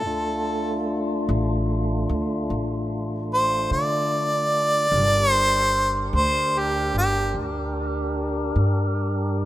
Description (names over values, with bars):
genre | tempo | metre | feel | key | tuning
slow blues | 49 BPM (dotted quarters) | 12/8 | straight | D minor | A4 = 440 Hz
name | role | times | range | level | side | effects
clear harmonica | melody | 0.0-7.4 s | G4 to D5 | -21 LUFS | equal | none
tonewheel organ | sustained chords | 0.0-9.5 s | A3 to Bb4 | -27 LUFS | equal | slow rotary speaker
upright bass | bass | 0.0-9.5 s | G1 to D3 | -26 LUFS | equal | none
room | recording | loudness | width
light reverb, small room reverb | rough home demo mix | -20 LUFS | side -14 dB against mid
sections
0.0-9.5 A section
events
harmonica solo 0.0-9.5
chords
0.0 Dm; 4.9 Gm